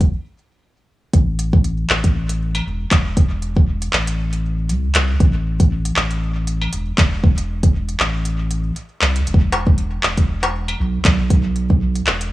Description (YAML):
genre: IDM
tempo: 118 BPM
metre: 4/4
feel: swing 56% on 16ths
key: A minor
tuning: A4 = 440 Hz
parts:
  - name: warm sub bass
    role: bass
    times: 0.0-12.3 s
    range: E1 to C2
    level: -20 LUFS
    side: equal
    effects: none
  - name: electronic kick drum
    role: drums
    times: 0.0-11.8 s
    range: none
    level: -14 LUFS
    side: equal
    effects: small room reverb
  - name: industrial drum kit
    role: drums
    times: 0.0-12.3 s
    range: handclaps, hi-hat, struck metal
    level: -21 LUFS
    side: equal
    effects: small room reverb
room: little or no reverb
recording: dry, gritty hardware recording, transformer saturation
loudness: -16 LUFS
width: side -16 dB against mid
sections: 0.0-1.1 A section; 1.1-12.3 B section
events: stop 0.1-1.1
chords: none